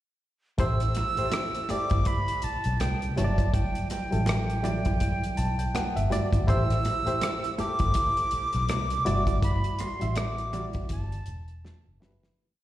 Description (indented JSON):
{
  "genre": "lush 1970s-style soul",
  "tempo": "81 BPM",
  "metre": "4/4",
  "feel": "swing 58% on 16ths",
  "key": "A dorian",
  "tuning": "A4 = 441 Hz",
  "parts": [
    { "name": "breathy bright jazz flute", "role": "melody", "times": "0.6-12.0 s", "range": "G5 to E6", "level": "-30 LUFS", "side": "right 1 dB", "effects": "slapback echo" },
    { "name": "barky reed electric piano", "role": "accompaniment", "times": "0.6-12.4 s", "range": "F#3 to A5", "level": "-32 LUFS", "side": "left 1 dB", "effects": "fast tremolo, slapback echo" },
    { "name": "vintage muted fingered electric bass", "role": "bass", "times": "0.6-12.3 s", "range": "E1 to C2", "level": "-28 LUFS", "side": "equal", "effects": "none" },
    { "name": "warm soul drum kit", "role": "drums", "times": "0.6-12.4 s", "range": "hi-hat, kick drum, rim click, snare drum", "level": "-30 LUFS", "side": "equal", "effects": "none" },
    { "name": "congas", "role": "percussion", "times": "1.0-12.2 s", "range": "none", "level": "-37 LUFS", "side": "right 5 dB", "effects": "slapback echo" }
  ],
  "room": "small room ambience",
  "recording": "live gig heard through the venue's PA, recital hall reverb",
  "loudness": "-24 LUFS",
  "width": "side -14 dB against mid",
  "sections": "0.6-12.4 verse",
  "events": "reed electric piano fill 5.0-6.5; fade-out 9.4-12.4; drum fill 11.6-12.4",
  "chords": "0.6 Am7; 3.2 Em9/G; 6.5 Am7; 9.1 Em9/G; 10.9 G69",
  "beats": "| 0.59 1.32 2.06 2.80 | 3.54 4.27 5.01 5.75 | 6.48 7.22 7.95 8.69 | 9.43 10.16 10.90 11.64"
}